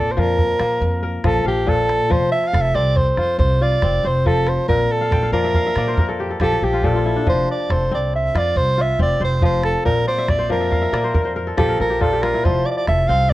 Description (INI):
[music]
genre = west african traditional, West African string and xylophone music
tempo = 93 BPM (dotted quarters)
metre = 12/8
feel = straight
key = unclear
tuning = A4 = 440 Hz
[part]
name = breathy soprano saxophone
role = melody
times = 0.0-13.3 s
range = G4 to F5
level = -19 LUFS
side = right 2 dB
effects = none
[part]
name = kora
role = arpeggios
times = 0.0-13.3 s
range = Bb2 to G5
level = -22 LUFS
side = left 4 dB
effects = none
[part]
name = upright bass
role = bass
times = 0.0-13.3 s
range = F1 to Bb2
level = -22 LUFS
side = equal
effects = none
[part]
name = calabash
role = percussion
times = 0.4-13.3 s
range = none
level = -21 LUFS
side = right 1 dB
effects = none
[sound]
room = light reverb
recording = worn, warbling old tape, cassette tape, warbly pitch drift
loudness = -16 LUFS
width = side -16 dB against mid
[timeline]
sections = 0.0-13.3 A section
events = kora fill 5.0-7.3, 10.1-12.4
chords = 0.0 Bb; 2.1 F; 4.7 Bb5; 7.3 F; 9.9 Bb5; 12.4 F